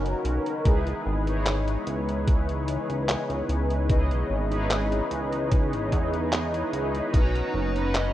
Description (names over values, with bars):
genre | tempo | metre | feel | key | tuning
vaporwave | 74 BPM | 4/4 | straight | unclear | A4 = 438 Hz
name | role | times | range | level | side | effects
mellow synth brass | accompaniment | 0.0-8.1 s | C#4 to A#5 | -28 LUFS | left 1 dB | lush chorus, tape echo
warbly tape-like pad | sustained chords | 0.0-8.1 s | C#3 to F#5 | -38 LUFS | right 1 dB | chorus, built-in reverb
chorused synth bass | bass | 0.0-8.1 s | F#1 to E2 | -28 LUFS | equal | tube saturation
detuned 8-bit digital drum machine | drums | 0.1-8.1 s | handclaps, hi-hat | -31 LUFS | equal | none
electronic kick drum | drums | 0.7-7.3 s | none | -22 LUFS | equal | none
smooth overdriven lead guitar | melody | 7.1-8.1 s | B4 to D#5 | -33 LUFS | left 3 dB | none
room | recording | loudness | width
little or no reverb | rough home demo mix, cassette tape, nothing above 10.5 kHz | -23 LUFS | side -13 dB against mid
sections
0.0-8.1 A section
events
none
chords
0.0 Bmaj7; 0.7 C#m9; 7.1 Bmaj7